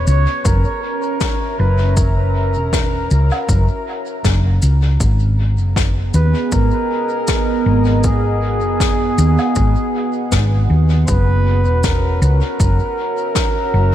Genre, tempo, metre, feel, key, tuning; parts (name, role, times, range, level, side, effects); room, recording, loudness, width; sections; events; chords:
ambient dub; 79 BPM; 4/4; swing 55% on 16ths; A4 = 438 Hz
trumpet with bucket mute; melody; 0.0-13.9 s; G#4 to C#5; -22 LUFS; equal; dub echo
deep dark ambient pad; sustained chords; 0.0-13.9 s; B3 to A#5; -23 LUFS; right 2 dB; chorus, built-in reverb
hollow-body short-scale fingered electric bass; bass; 0.0-13.9 s; E1 to D#2; -14 LUFS; equal
shaker, snare drum and woodblock; drums; 0.1-13.5 s; -26 LUFS; left 4 dB; dub echo
electronic kick drum; drums; 0.5-13.5 s; -19 LUFS; equal
light reverb, small room ambience; -14 LUFS; side -12 dB against mid
0.0-13.9 A section
0.0 F#7; 5.0 G#m7; 11.1 F#7